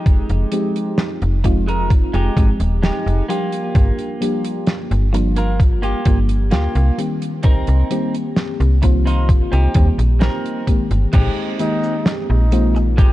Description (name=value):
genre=vaporwave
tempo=65 BPM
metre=4/4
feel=straight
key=F dorian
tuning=A4 = 445 Hz
part: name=mellow FM electric piano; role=accompaniment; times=0.0-13.1 s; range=Eb3 to G4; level=-22 LUFS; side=left 1 dB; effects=wide subtle chorus, tape echo
part: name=clean electric guitar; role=riff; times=0.0-13.1 s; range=Ab3 to Bb4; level=-26 LUFS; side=right 1 dB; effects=lush chorus, vintage 12-bit sampler grit, tape echo
part: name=slap-like FM bass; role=bass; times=0.1-13.1 s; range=Eb1 to Eb2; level=-16 LUFS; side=equal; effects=none
part: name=damped 70s drum kit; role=drums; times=0.1-13.1 s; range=cabasa, crash cymbal, hi-hat, snare drum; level=-23 LUFS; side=right 1 dB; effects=studio reverb
part: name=electronic kick drum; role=drums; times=0.1-13.1 s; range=none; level=-14 LUFS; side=equal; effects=studio reverb
part: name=breathy flugelhorn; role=melody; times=11.6-12.2 s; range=Eb4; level=-25 LUFS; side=equal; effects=tape echo
room=little or no reverb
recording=dark, warm production, cassette tape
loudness=-15 LUFS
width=side -16 dB against mid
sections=0.0-11.1 A section; 11.1-13.1 B section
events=none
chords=0.0 Fm9; 3.3 Gm7; 7.4 Cm7; 11.1 Bb13sus4